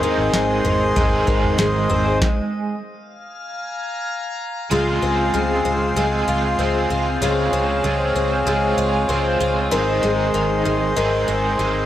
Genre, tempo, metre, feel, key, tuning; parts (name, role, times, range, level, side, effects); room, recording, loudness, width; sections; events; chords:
dream pop; 96 BPM; 4/4; straight; Db major; A4 = 440 Hz
crunchy overdriven guitar; accompaniment; 0.0-11.9 s; Ab2 to Ab4; -25 LUFS; right 5 dB; tremolo, analog chorus
hand-pumped harmonium; sustained chords; 0.0-11.9 s; Ab4 to C6; -22 LUFS; equal
picked twelve-string acoustic guitar; arpeggios; 0.0-11.9 s; Eb3 to F4; -21 LUFS; left 2 dB; ensemble chorus, tape echo
drifting glass-harmonics texture; texture; 0.2-5.4 s; Eb5 to Bb5; -31 LUFS; left 2 dB; chorus, built-in reverb, tape echo
vintage muted fingered electric bass; bass; 0.2-11.9 s; Ab1 to Db2; -25 LUFS; equal
booming analog drum machine; drums; 0.3-2.4 s; kick drum, snare drum, toms; -22 LUFS; equal
light reverb, digital ambience; dry, gritty hardware recording; -17 LUFS; side -12 dB against mid
0.0-4.7 A section; 4.7-11.9 B section
stop 2.2-4.7
0.0 Ab; 2.2 Fmadd11; 4.7 Dbmaj7; 9.7 Ab